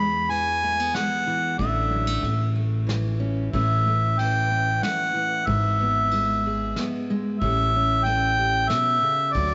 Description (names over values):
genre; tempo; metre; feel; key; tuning
acoustic folk duo or small band; 93 BPM; 3/4; straight; unclear; A4 = 440 Hz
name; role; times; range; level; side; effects
mellow harmonica; melody; 0.0-9.5 s; D5 to B5; -25 LUFS; equal; none
fingerpicked steel-string acoustic guitar; accompaniment; 0.0-9.5 s; D2 to G#4; -31 LUFS; equal; none
upright bass; bass; 0.0-9.5 s; G#1 to E2; -28 LUFS; equal; none
vintage brush drum kit; drums; 0.3-9.5 s; kick drum, ride cymbal, snare drum; -39 LUFS; equal; none
room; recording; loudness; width
light reverb, small room reverb; nothing above 7.8 kHz; -23 LUFS; mono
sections
0.0-9.5 A section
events
none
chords
0.0 E; 1.6 Asus4; 2.2 A; 5.5 E/G#; 7.4 A7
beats
0.30 0.95 | 1.59 2.24 2.88 | 3.53 4.18 4.82 | 5.47 6.11 6.76 | 7.41 8.05 8.70 | 9.35